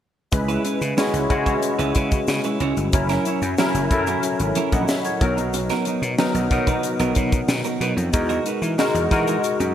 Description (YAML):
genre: polished 1980s jazz-funk pop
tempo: 92 BPM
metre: 4/4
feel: straight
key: C# dorian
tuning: A4 = 440 Hz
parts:
  - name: barky tine electric piano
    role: accompaniment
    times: 0.3-9.7 s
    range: F#3 to F#5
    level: -22 LUFS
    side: left 2 dB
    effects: overdrive, ensemble chorus
  - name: clean electric guitar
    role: riff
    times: 0.3-9.6 s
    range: F#3 to C#5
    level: -27 LUFS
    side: right 5 dB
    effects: lush chorus
  - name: gritty slap bass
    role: bass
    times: 0.3-9.7 s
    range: F#1 to E3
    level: -25 LUFS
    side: equal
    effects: overdrive
  - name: crisp fusion drum kit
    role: drums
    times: 0.3-9.7 s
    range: hi-hat, kick drum, snare drum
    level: -24 LUFS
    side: equal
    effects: gated reverb
  - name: tube shaker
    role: percussion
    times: 0.3-9.7 s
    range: none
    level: -39 LUFS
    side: left 8 dB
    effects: none
room: moderate lush hall reverb, RT60 2.7 s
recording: bright 1980s-style digital production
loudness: -19 LUFS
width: side -10 dB against mid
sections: 0.3-9.7 A section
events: tine electric piano fill 9.4-9.7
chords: 0.3 C#m7; 2.9 F#7; 5.2 Bmaj7; 8.1 Emaj9#11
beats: | 0.33 0.98 1.63 2.28 | 2.93 3.58 4.24 4.89 | 5.54 6.19 6.84 7.49 | 8.14 8.79 9.44